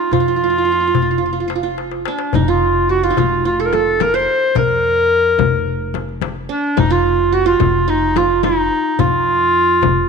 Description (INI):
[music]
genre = Turkish makam ensemble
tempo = 108 BPM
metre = 4/4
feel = straight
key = F makam hicaz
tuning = A4 = 442 Hz
[part]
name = clear clarinet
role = melody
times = 0.0-10.1 s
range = D4-41c to C5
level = -16 LUFS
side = equal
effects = none
[part]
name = qanun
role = second line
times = 0.0-10.1 s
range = D4-40c to C5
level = -19 LUFS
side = right 9 dB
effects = none
[part]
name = upright bass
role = bass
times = 0.1-10.1 s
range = F1 to F2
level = -23 LUFS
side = left 1 dB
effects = none
[part]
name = darbuka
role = percussion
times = 0.1-10.0 s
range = none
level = -22 LUFS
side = left 11 dB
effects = none
[part]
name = frame drum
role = percussion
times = 2.3-10.0 s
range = none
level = -23 LUFS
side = left 10 dB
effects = none
[sound]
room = wet echo chamber reverb, RT60 1.8 s, studio reverb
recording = 1960s-style stereo with parts hard left and right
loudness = -13 LUFS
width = side -5 dB against mid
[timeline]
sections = 0.0-10.1 A section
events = drum fill 1.8-2.3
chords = none